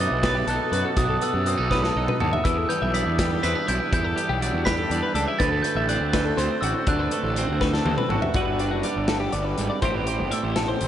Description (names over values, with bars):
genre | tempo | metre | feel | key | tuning
math rock and midwest emo | 81 BPM (dotted quarters) | 6/8 | straight | G major | A4 = 442 Hz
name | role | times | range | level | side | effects
glockenspiel with soft plastic mallets | melody | 0.0-7.8 s | D#6 to B6 | -28 LUFS | right 1 dB | tape echo
twelve-string electric guitar | accompaniment | 0.0-10.9 s | G2 to B4 | -28 LUFS | right 6 dB | none
twelve-string electric guitar | arpeggios | 0.0-10.9 s | F#4 to E5 | -28 LUFS | left 4 dB | wide subtle chorus
fuzz picked electric bass | bass | 0.0-10.9 s | F#1 to F#2 | -26 LUFS | equal | overdrive
modern studio drum kit | drums | 0.2-10.9 s | hi-hat, kick drum, snare drum, toms | -28 LUFS | equal | none
room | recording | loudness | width
moderate huge ambient reverb, RT60 7.5 s | dreamy mix soaked in reverb, nothing above 10.8 kHz | -21 LUFS | side -10 dB against mid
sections
0.0-8.3 A section; 8.3-10.9 B section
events
drum fill 1.7-2.4, 7.6-8.3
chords
0.0 B7; 2.4 Em7; 5.4 D7; 8.3 Gmaj7; 9.8 Am7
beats
0.23 | 0.97 1.71 | 2.45 3.19 | 3.92 4.66 | 5.40 6.13 | 6.87 7.61 | 8.35 9.08 | 9.82 10.56